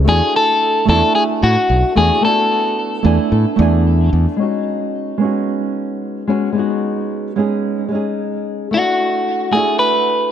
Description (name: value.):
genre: sunset chillout.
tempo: 111 BPM.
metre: 4/4.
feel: swing 54% on 16ths.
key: C# phrygian.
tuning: A4 = 440 Hz.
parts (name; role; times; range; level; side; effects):
flamenco guitar; accompaniment; 0.0-10.3 s; G#3 to G#5; -18 LUFS; moving between left 5 dB and right 6 dB; auto-pan, low-pass filter, digital delay.
modern bright fingered electric bass; bass; 0.0-4.3 s; B1 to A2; -14 LUFS; equal; none.
electric guitar at the edge of break-up; melody; 0.1-4.1, 8.7-10.3 s; F#4 to B4; -15 LUFS; left 1 dB; digital delay.
room: moderate plate reverb, RT60 2.7 s.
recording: none.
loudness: -14 LUFS.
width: side -9 dB against mid.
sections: 0.0-4.4 A section; 4.4-10.3 B section.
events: filter sweep on nylon-string guitar 4.4-10.3.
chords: 0.1 E9sus4; 4.4 C#9sus4; 8.7 E9sus4.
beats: | 0.08 0.62 1.16 1.70 | 2.24 2.78 3.32 3.86 | 4.40 4.94 5.48 6.02 | 6.56 7.10 7.64 8.19 | 8.73 9.27 9.81.